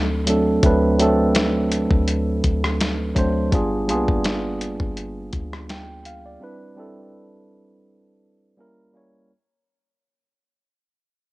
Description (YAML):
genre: contemporary R&B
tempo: 83 BPM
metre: 4/4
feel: swing 54% on 16ths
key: unclear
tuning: A4 = 440 Hz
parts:
  - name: mellow tine electric piano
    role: accompaniment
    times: 0.0-9.3 s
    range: F#3 to G5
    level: -21 LUFS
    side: right 1 dB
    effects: cassette tape
  - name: clean 808-style bass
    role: bass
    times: 0.0-6.4 s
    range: G1 to D2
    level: -26 LUFS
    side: left 1 dB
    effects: none
  - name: dusty soul sampler-style drum kit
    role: drums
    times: 0.3-6.2 s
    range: hi-hat, kick drum, rim click, snare drum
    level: -22 LUFS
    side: left 1 dB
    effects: vintage 12-bit sampler grit
room: light reverb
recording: home recording on cassette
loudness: -18 LUFS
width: side -20 dB against mid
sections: 0.0-9.3 A section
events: fade-out 0.0-9.3; break 6.4-9.3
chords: 0.0 D7; 3.5 G7b9; 6.4 Cmaj9; 8.6 C#dim7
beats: | 0.63 1.35 2.08 2.80 | 3.52 4.25 4.97 5.69 | 6.41 7.14 7.86 8.58